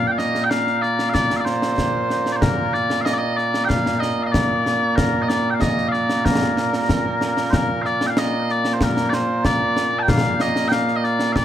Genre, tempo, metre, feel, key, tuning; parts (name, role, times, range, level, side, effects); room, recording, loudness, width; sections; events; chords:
scottish traditional, Scottish pipe music; 94 BPM; 4/4; straight; Bb major; A4 = 439 Hz
mellow small bagpipes; melody; 0.0-11.4 s; Bb2 to A5; -19 LUFS; equal; tape echo
concert snare drum and concert bass drum; drums; 0.2-11.4 s; -22 LUFS; left 1 dB
light reverb; close, detailed microphones; -17 LUFS; side -10 dB against mid
0.0-7.5 A section; 7.5-11.4 A section